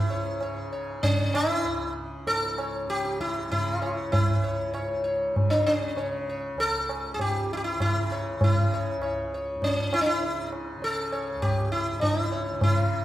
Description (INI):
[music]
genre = indian classical, Hindustani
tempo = 98 BPM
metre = 7/4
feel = straight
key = C# raga todi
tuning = A4 = 440 Hz
[part]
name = sitar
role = melody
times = 0.0-13.0 s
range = C#4 to C#5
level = -27 LUFS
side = equal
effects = none
[part]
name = tanpura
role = drone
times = 0.0-13.0 s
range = C#2 to C#3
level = -36 LUFS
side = equal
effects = none
[part]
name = tabla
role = percussion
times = 0.4-12.8 s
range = none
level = -28 LUFS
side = equal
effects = none
[sound]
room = wet recital hall reverb, RT60 1.5 s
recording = recorded in a church or concert hall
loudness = -24 LUFS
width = side -14 dB against mid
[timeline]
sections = 0.0-13.0 A section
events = speeding up 0.0-13.0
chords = none